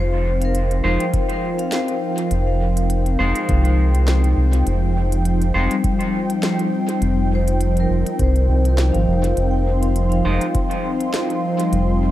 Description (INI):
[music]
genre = ambient dub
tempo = 102 BPM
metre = 4/4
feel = swing 55% on 16ths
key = F minor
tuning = A4 = 438 Hz
[part]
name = warm analog pad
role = sustained chords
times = 0.0-12.1 s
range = F3 to C6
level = -23 LUFS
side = right 1 dB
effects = chorus
[part]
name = vibraphone with medium hard mallets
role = arpeggios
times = 0.0-12.1 s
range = G3 to G5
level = -25 LUFS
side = left 2 dB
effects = tape echo
[part]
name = round analog bass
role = bass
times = 0.0-12.1 s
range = F1 to C2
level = -18 LUFS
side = equal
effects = none
[part]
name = organic electronic drum kit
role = drums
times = 0.4-11.9 s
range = hi-hat, snare drum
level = -30 LUFS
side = equal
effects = dub echo
[part]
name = clean electric guitar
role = stabs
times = 0.8-5.7, 10.2-10.5 s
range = Ab3 to C5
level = -28 LUFS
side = left 1 dB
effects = dub echo
[part]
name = electronic kick drum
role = drums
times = 1.1-10.7 s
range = none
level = -23 LUFS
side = equal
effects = overdrive
[sound]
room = little or no reverb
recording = dark, warm production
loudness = -16 LUFS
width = side -14 dB against mid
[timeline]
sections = 0.0-12.1 A section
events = none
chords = 0.0 Fm7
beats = 0.55 1.14 1.73 | 2.31 2.90 3.49 4.08 | 4.67 5.25 5.84 6.43 | 7.02 7.61 8.20 8.78 | 9.37 9.96 10.55 11.14 | 11.72